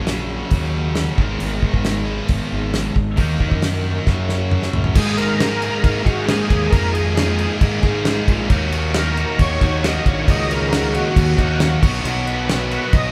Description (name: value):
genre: classic rock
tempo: 135 BPM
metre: 4/4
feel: straight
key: G# minor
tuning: A4 = 440 Hz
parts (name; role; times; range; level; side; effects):
- string machine, full ensemble; sustained chords; 0.0-13.1 s; A#3 to D#5; -36 LUFS; equal; none
- sludgy distorted guitar; riff; 0.0-13.1 s; B2 to B4; -28 LUFS; equal; overdrive
- tight distorted guitar; riff; 0.0-13.1 s; F#2 to G#4; -28 LUFS; equal; distortion
- fuzz fingered electric bass; bass; 0.0-13.1 s; G#1 to G#2; -24 LUFS; equal; overdrive
- damped 70s drum kit; drums; 0.1-13.0 s; crash cymbal, hi-hat, kick drum, snare drum, toms; -22 LUFS; equal; none
- overdriven tonewheel organ; melody; 5.0-13.1 s; F#4 to D#5; -27 LUFS; equal; chorus vibrato, slow rotary speaker
room: moderate large studio reverb, RT60 1.5 s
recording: band playing live in one room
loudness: -18 LUFS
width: mono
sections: 0.0-5.0 A section; 5.0-13.1 B section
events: drum fill 4.1-5.0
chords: 0.0 F#; 1.2 G#m; 3.2 D#m; 4.1 F#; 5.0 G#sus2; 8.5 D#m; 11.8 B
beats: 0.08 0.52 0.96 | 1.41 1.85 2.29 2.74 | 3.18 3.62 4.07 4.51 | 4.95 5.40 5.84 6.28 | 6.73 7.17 7.61 8.05 | 8.50 8.94 9.38 9.83 | 10.27 10.72 11.16 11.60 | 12.05 12.49 12.94